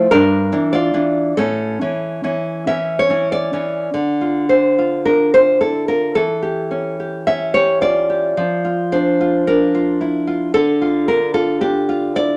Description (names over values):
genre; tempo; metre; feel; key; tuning
romantic piece for solo classical guitar; 46-56 BPM; 2/4; rubato; D minor; A4 = 440 Hz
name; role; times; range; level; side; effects
nylon-string guitar; solo; 0.0-12.4 s; G2 to E5; -17 LUFS; equal; none
room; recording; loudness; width
moderate large studio reverb, RT60 0.9 s; none; -17 LUFS; mono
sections
0.0-3.9 A section; 3.9-12.4 B section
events
none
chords
0.1 Em7b5/G; 1.4 A; 3.9 Dm; 6.2 A7/E; 8.4 Dm/F; 10.6 Dm